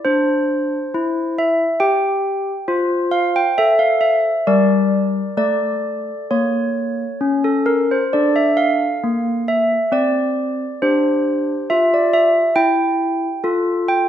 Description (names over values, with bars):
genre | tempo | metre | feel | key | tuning
classical, tune for handbells | 68 BPM | 3/4 | straight | unclear | A4 = 441 Hz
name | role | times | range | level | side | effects
handbells | solo | 0.0-14.1 s | G3 to G5 | -15 LUFS | equal | none
room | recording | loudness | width
wet recital hall reverb, RT60 1.4 s | nothing above 11.0 kHz | -15 LUFS | side -10 dB against mid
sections
0.0-14.1 A section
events
none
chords
0.1 C/D; 2.7 F; 4.5 Gm; 5.4 A; 8.1 Dm; 10.8 C/D; 13.5 F